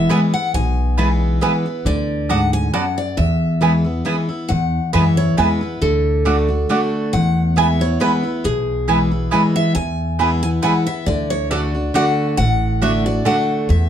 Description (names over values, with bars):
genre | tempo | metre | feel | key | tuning
bluegrass | 137 BPM | 3/4 | swing 54% on 8ths | E mixolydian | A4 = 440 Hz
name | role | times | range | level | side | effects
picked steel-string acoustic guitar | melody | 0.0-13.9 s | G#4 to G#5 | -22 LUFS | left 1 dB | none
picked steel-string acoustic guitar | accompaniment | 0.0-13.9 s | E2 to F#4 | -19 LUFS | left 1 dB | none
upright bass | bass | 0.0-13.9 s | A1 to F#2 | -21 LUFS | equal | none
mandolin | stabs | 0.1-13.4 s | A3 to A5 | -20 LUFS | right 5 dB | none
room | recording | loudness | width
moderate studio reverb, RT60 0.6 s | dark, warm production | -15 LUFS | side -9 dB against mid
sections
0.0-4.5 A section; 4.5-13.9 B section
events
none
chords
0.0 E; 1.9 D6; 3.2 E; 5.8 D; 7.1 E; 11.1 D